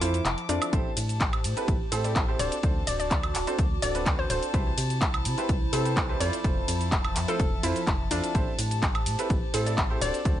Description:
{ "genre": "piano house", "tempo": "126 BPM", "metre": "4/4", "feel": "straight", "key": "A minor", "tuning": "A4 = 438 Hz", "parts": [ { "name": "hollow square pluck", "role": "melody", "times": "0.0-10.2 s", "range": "D4 to D5", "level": "-33 LUFS", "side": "left 2 dB", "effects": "chorus, ping-pong delay" }, { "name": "rich chamber string section", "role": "sustained chords", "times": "0.0-10.4 s", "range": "A5 to D6", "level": "-38 LUFS", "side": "left 4 dB", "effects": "sidechain pumping" }, { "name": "clear upright piano", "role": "riff", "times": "0.0-10.4 s", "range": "C4 to D5", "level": "-33 LUFS", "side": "right 2 dB", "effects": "sidechain pumping" }, { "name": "organ-like FM bass", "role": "bass", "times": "0.0-10.4 s", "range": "D1 to C3", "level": "-30 LUFS", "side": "equal", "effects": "tube saturation, sidechain pumping" }, { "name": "house drum kit", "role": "drums", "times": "0.0-10.4 s", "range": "cabasa, handclaps, hi-hat, ride cymbal, woodblock", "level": "-31 LUFS", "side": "equal", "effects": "none" }, { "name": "warbly tape-like pad", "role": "texture", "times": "0.0-10.4 s", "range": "F3 to D6", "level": "-37 LUFS", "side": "right 2 dB", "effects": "chorus, built-in reverb, sidechain pumping" }, { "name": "electronic kick drum", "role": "drums", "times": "0.7-10.4 s", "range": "none", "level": "-28 LUFS", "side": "equal", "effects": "none" } ], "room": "little or no reverb", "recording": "nothing above 10.5 kHz", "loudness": "-24 LUFS", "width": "side -12 dB against mid", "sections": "0.0-10.4 A section", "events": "kick drops out 0.3-0.7", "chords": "0.0 Fmaj7; 0.7 Am7; 2.4 D7; 4.5 Cmaj7; 6.2 Fmaj7; 8.3 Am7" }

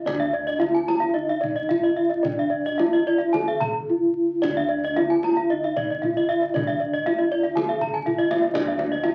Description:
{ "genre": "Balinese gamelan", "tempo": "110-123 BPM", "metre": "4/4", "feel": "straight", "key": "D pelog", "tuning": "A4 = 438 Hz", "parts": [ { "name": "gamelan-type bronze metallophone", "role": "melody", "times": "0.0-9.1 s", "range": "D4 to A4-45c", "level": "-25 LUFS", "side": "equal", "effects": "none" }, { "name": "gamelan-type bronze metallophone", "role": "arpeggios", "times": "0.0-9.1 s", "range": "D5 to Bb5-40c", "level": "-31 LUFS", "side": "equal", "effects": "none" }, { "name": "gamelan-type bossed gongs", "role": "bass", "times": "0.0-9.1 s", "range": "D2 to Eb4", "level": "-39 LUFS", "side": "equal", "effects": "none" }, { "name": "kendang", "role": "percussion", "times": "0.1-9.1 s", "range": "none", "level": "-34 LUFS", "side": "equal", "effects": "none" }, { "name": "gamelan-type bronze metallophone", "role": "arpeggios", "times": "0.2-9.0 s", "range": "D5 to Bb5-40c", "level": "-29 LUFS", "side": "equal", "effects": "none" } ], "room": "moderate small room reverb, RT60 0.5 s", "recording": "very old 78 rpm record, vinyl crackle", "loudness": "-23 LUFS", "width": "mono", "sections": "0.0-8.6 A section", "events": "none", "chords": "none" }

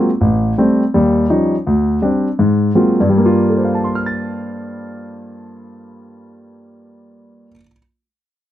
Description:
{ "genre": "solo jazz", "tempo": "165 BPM", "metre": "4/4", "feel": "swing 66% on 8ths", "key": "G minor", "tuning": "A4 = 440 Hz", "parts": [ { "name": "warm concert grand piano", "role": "solo", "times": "0.0-7.8 s", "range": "A1 to A6", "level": "-13 LUFS", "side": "equal", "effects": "none" } ], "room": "light reverb", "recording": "dry, close 1970s-style studio recording", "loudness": "-12 LUFS", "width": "side -12 dB against mid", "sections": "0.0-3.1 A section; 3.1-6.0 B section", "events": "none", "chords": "0.2 Am7; 0.9 Eb9; 1.7 D7sus4; 2.4 Ab13; 3.1 Gm7" }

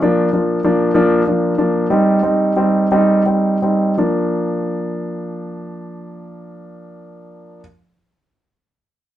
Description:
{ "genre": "pop", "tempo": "54-65 BPM (dotted quarters)", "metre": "6/8", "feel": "straight", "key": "Bb major", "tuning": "A4 = 440 Hz", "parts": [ { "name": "clear concert grand piano", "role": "accompaniment", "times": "0.0-7.6 s", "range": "F3 to Eb4", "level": "-15 LUFS", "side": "equal", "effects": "none" } ], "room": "moderate studio reverb, RT60 0.6 s", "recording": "rough rehearsal-room recording", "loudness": "-14 LUFS", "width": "side -12 dB against mid", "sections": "0.0-4.0 A section; 4.0-8.5 B section", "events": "slowing down 0.0-4.0", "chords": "0.0 Bb; 1.9 Cm; 4.0 Bb" }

